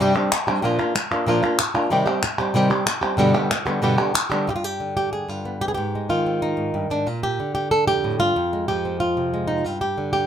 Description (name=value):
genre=flamenco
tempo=186 BPM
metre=4/4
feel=straight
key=G phrygian dominant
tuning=A4 = 439 Hz
part: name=flamenco guitar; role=melody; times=0.0-10.3 s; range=F2 to A4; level=-20 LUFS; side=equal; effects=none
part: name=palmas hand claps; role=percussion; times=0.2-4.5 s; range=none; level=-23 LUFS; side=left 1 dB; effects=none
room=moderate small room reverb, RT60 0.5 s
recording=minimal, uncompressed stereo recording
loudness=-19 LUFS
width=side -9 dB against mid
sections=0.0-4.5 A section; 4.5-10.3 B section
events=none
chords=0.0 Gsus4; 0.6 Bb; 1.9 Cm; 3.2 G; 5.8 Ab5; 7.1 Bb; 8.4 Fm; 9.6 G5